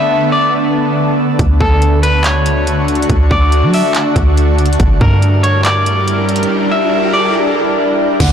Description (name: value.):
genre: hip hop, atmospheric cloud-rap.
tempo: 141 BPM.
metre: 4/4.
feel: half-time.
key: unclear.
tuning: A4 = 439 Hz.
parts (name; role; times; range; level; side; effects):
electric guitar at the edge of break-up; melody; 0.0-7.3 s; A4 to E5; -17 LUFS; left 2 dB; spring reverb, ping-pong delay.
shimmering ambient pad; sustained chords; 0.0-8.3 s; D3 to Bb4; -15 LUFS; equal; chorus, built-in reverb, sidechain pumping.
drifting glass-harmonics texture; texture; 0.0-8.3 s; D4 to C#6; -26 LUFS; right 1 dB; chorus, built-in reverb.
soft 808-style bass; bass; 1.4-8.3 s; G1 to F#3; -13 LUFS; equal; none.
trap drum kit; drums; 1.4-8.3 s; crash cymbal, handclaps, hi-hat, kick drum; -17 LUFS; equal; none.
riser and downlifter; sound effects; 5.8-8.3 s; none; -23 LUFS; right 2 dB; none.
concert harp; arpeggios; 8.2-8.3 s; D3; -14 LUFS; right 1 dB; none.
room: digital ambience.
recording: blown-out, overdriven recording, overdrive.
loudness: -10 LUFS.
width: side -8 dB against mid.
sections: 0.0-8.2 A section.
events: riser 5.8-8.2.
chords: 0.0 Bm7; 1.4 Dmaj7; 4.8 Gm6.